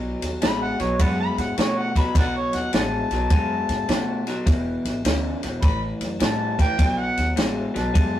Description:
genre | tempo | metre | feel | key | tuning
electric blues shuffle | 104 BPM | 4/4 | swing 66% on 8ths | unclear | A4 = 439 Hz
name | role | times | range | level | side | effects
electric guitar through a small old amp | riff | 0.0-8.2 s | E2 to A3 | -26 LUFS | left 1 dB | spring reverb
upright bass | bass | 0.0-8.2 s | E1 to B2 | -30 LUFS | equal | none
compact cocktail drum kit | drums | 0.2-8.1 s | kick drum, ride cymbal, snare drum | -22 LUFS | equal | none
mellow harmonica | second line | 0.4-8.2 s | B4 to B5 | -26 LUFS | left 1 dB | overdrive, slapback echo
room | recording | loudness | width
moderate small room reverb, RT60 0.5 s | rough rehearsal-room recording, tube saturation | -20 LUFS | side -12 dB against mid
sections
0.0-8.2 A section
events
harmonica solo 0.0-8.2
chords
0.0 B7(no3); 4.5 E7; 5.6 A5; 6.8 B7(no3)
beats
0.42 1.00 1.58 | 2.15 2.73 3.31 3.89 | 4.47 5.05 5.63 6.21 | 6.79 7.37 7.95

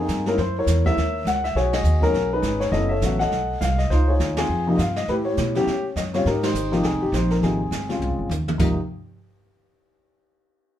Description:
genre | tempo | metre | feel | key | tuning
jazz piano trio | 204 BPM | 4/4 | swing 60% on 8ths | Ab major | A4 = 440 Hz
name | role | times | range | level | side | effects
dark baby grand piano | melody | 0.0-8.8 s | C3 to Gb5 | -22 LUFS | left 2 dB | none
upright bass | bass | 0.0-8.8 s | Gb1 to C#3 | -23 LUFS | equal | none
jazz brush drum kit | drums | 0.1-8.7 s | brushed snare drum, crash cymbal, hi-hat, kick drum, ride cymbal, snare drum, toms | -30 LUFS | right 3 dB | none
room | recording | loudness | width
moderate studio reverb, RT60 0.6 s | heard from further back in the room | -19 LUFS | side -11 dB against mid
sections
0.0-8.6 A section; 8.6-9.8 B section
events
band accent 1.7, 4.3, 6.4; drum fill 8.0-8.6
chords
0.4 Gb7; 1.6 B69; 2.7 Gbm7; 3.3 B7; 3.9 Dbmaj9; 5.1 A9; 6.3 Abmaj9; 8.6 N.C.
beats
0.09 | 0.38 0.67 0.97 1.26 | 1.55 1.85 2.14 2.44 | 2.73 3.02 3.32 3.61 | 3.90 4.20 4.49 4.78 | 5.08 5.37 5.67 5.96 | 6.25 6.54 6.84 7.13 | 7.42 7.72 8.01 8.30 | 8.60

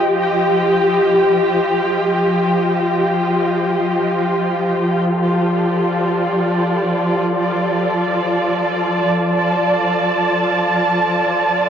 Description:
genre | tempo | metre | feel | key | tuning
ambient | free time | none | none | unclear | A4 = 439 Hz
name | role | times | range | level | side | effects
muted studio string section | solo | 0.0-11.7 s | F3 to A5 | -14 LUFS | equal | ping-pong delay
room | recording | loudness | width
wet shimmer reverb, RT60 8.0 s | worn, warbling old tape, cassette tape, warbly pitch drift | -14 LUFS | side -8 dB against mid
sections
0.0-11.7 A section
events
none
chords
0.0 F7(no3); 4.8 Dm/F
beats
free time

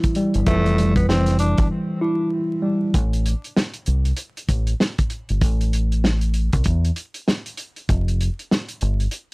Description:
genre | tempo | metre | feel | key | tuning
hip hop, boom-bap hip-hop | 97 BPM | 4/4 | swing 61% on 16ths | unclear | A4 = 441 Hz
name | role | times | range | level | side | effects
tine electric piano | accompaniment | 0.0-3.0 s | E3 to E4 | -20 LUFS | equal | medium stereo tremolo, cassette tape, high-pass filter, low-pass filter
warm soul drum kit | drums | 0.0-9.3 s | hi-hat, kick drum, snare drum | -22 LUFS | equal | none
deep dub fingered electric bass | bass | 0.4-9.1 s | F1 to E2 | -20 LUFS | equal | tube saturation
growling tenor saxophone | melody | 0.5-1.7 s | A3 to D4 | -26 LUFS | equal | high-pass filter, low-pass filter, tape echo
room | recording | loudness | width
little or no reverb | dry, gritty hardware recording, vinyl crackle | -18 LUFS | side -27 dB against mid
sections
0.0-2.9 A section; 2.9-9.3 B section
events
break 1.7-2.9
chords
0.0 Fsus2; 2.9 N.C.; 7.9 Fsus2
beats
| 0.47 1.09 1.70 2.32 | 2.94 3.56 4.18 4.80 | 5.42 6.03 6.65 7.27 | 7.89 8.51 9.13

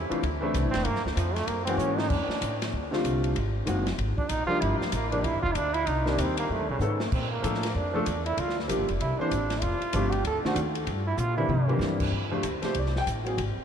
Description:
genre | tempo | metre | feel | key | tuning
jazz, small-group swing and bop | 192 BPM | 4/4 | swing 62% on 8ths | F major | A4 = 438 Hz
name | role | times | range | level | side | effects
upright bass | bass | 0.0-13.6 s | F1 to C3 | -30 LUFS | equal | none
warm concert grand piano | accompaniment | 0.1-13.4 s | D3 to G5 | -30 LUFS | left 1 dB | lush chorus
open jazz drum kit | drums | 0.1-13.5 s | crash cymbal, hi-hat, kick drum, ride cymbal, snare drum, toms | -34 LUFS | left 1 dB | none
brilliant trombone | second line | 0.7-11.8 s | C#3 to A4 | -30 LUFS | right 2 dB | none
room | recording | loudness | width
wet huge ambient reverb, RT60 7.0 s | dreamy mix soaked in reverb | -25 LUFS | side -8 dB against mid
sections
0.0-2.1 A section; 2.1-12.1 A section; 12.1-13.6 A section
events
trombone solo 0.0-12.1; drum fill 1.8-2.1, 6.8-7.1, 11.2-11.8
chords
0.2 Dm9; 0.9 G5; 1.5 Gb9; 2.1 F69; 3.4 Ab9; 4.6 Gm7; 5.9 Cm7; 6.5 B13; 7.1 Bbmaj7; 8.4 Gm7; 9.0 C13; 9.6 F69; 10.2 D7b9; 10.9 C9; 12.1 F69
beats
0.23 0.54 | 0.85 1.17 1.48 1.79 | 2.10 2.42 2.73 3.04 | 3.36 3.67 3.98 4.30 | 4.61 4.92 5.24 5.55 | 5.86 6.18 6.49 6.80 | 7.12 7.43 7.74 8.05 | 8.37 8.68 8.99 9.31 | 9.62 9.93 10.24 10.56 | 10.87 11.18 11.50 11.81 | 12.12 12.44 12.75 13.06 | 13.38

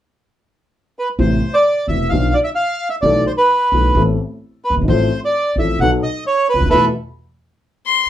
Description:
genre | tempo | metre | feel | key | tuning
tango | 130 BPM | 4/4 | rubato | A minor | A4 = 440 Hz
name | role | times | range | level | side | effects
bandoneon | melody | 1.0-6.9 s | A4 to F#5 | -16 LUFS | right 1 dB | none
dark upright piano | accompaniment | 1.2-6.9 s | E1 to A4 | -18 LUFS | left 2 dB | none
upright bass | bass | 1.2-6.9 s | E1 to E2 | -19 LUFS | right 1 dB | none
warm violin | second line | 7.9-8.1 s | C6 | -13 LUFS | left 8 dB | none
room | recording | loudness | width
wet studio ambience, RT60 0.5 s | band playing live in one room | -14 LUFS | side -11 dB against mid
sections
0.0-1.2 A section; 1.2-8.1 B section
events
band accent 6.7-8.1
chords
0.0 N.C.; 1.2 Amadd9; 2.1 Bdim; 3.0 Esus4/B; 4.0 Amadd9; 4.9 Fmaj7/A; 5.8 B7; 6.7 Esus4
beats
0.28 0.74 | 1.20 1.66 2.12 2.58 | 3.04 3.50 3.96 4.42 | 4.87 5.33 5.79 6.25 | 6.71 7.17 7.63

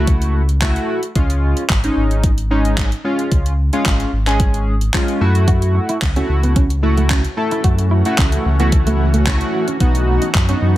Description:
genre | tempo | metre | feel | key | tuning
dance-pop | 111 BPM | 4/4 | straight | F# dorian | A4 = 440 Hz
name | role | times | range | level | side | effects
chorused polysynth | accompaniment | 0.0-10.8 s | G#3 to A4 | -20 LUFS | equal | sidechain pumping
sub bass with octave | bass | 0.0-10.8 s | G#1 to F#2 | -16 LUFS | equal | sidechain pumping
downlifter | sound effects | 0.1-1.2 s | none | -47 LUFS | equal | none
pop drum kit | drums | 0.1-10.6 s | handclaps, hi-hat, kick drum | -17 LUFS | equal | overdrive
granular cloud pad | sustained chords | 6.7-10.8 s | D#3 to F#4 | -24 LUFS | right 1 dB | built-in reverb, sidechain pumping
clean electric guitar | riff | 5.5-10.6 s | A3 to F#4 | -24 LUFS | right 3 dB | lush chorus
room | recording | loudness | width
digital ambience | none | -14 LUFS | side -15 dB against mid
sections
0.0-10.8 A section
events
none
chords
0.0 F#m7; 1.2 C#; 5.2 F#m7; 9.8 B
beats
0.07 0.61 | 1.16 1.70 2.24 2.78 | 3.32 3.86 4.40 4.94 | 5.48 6.02 6.56 7.10 | 7.64 8.18 8.72 9.26 | 9.80 10.35

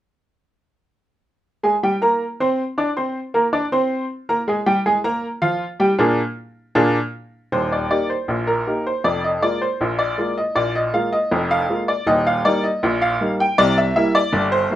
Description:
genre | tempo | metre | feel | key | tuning
ragtime piano | 79 BPM | 2/4 | straight | Eb major | A4 = 440 Hz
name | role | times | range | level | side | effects
bright upright piano | solo | 1.6-14.8 s | Eb1 to D6 | -17 LUFS | equal | none
room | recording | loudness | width
light reverb | minimal, uncompressed stereo recording | -17 LUFS | side -13 dB against mid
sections
1.4-7.5 A section; 7.5-14.8 B section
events
none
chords
1.4 Gmadd11 (rootless); 4.5 Bb7; 7.5 Eb; 9.0 Bb5/F; 12.1 Eb; 13.6 C7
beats
| 1.44 2.21 | 2.97 3.73 | 4.48 5.24 | 6.00 6.76 | 7.53 8.29 | 9.04 9.80 | 10.56 11.32 | 12.08 12.83 | 13.59 14.34

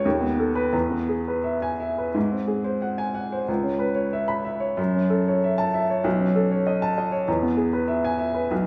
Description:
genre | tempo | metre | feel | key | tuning
classical, romantic character piece for solo piano | 83-99 BPM | 2/4 | rubato | E major | A4 = 441 Hz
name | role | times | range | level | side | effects
clear upright piano | solo | 0.0-8.7 s | B1 to B5 | -24 LUFS | equal | none
room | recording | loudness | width
wet recital hall reverb, RT60 1.3 s | heard from further back in the room | -24 LUFS | mono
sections
0.0-2.2 A section; 2.2-8.7 A section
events
none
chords
0.0 B7/D#; 0.7 E; 2.2 G#7; 3.5 C#m7; 4.8 F#m7; 6.0 B9; 7.3 E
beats
0.04 | 0.73 1.44 | 2.15 2.82 | 3.48 4.13 | 4.78 5.43 | 6.05 6.66 | 7.27 7.89 | 8.51

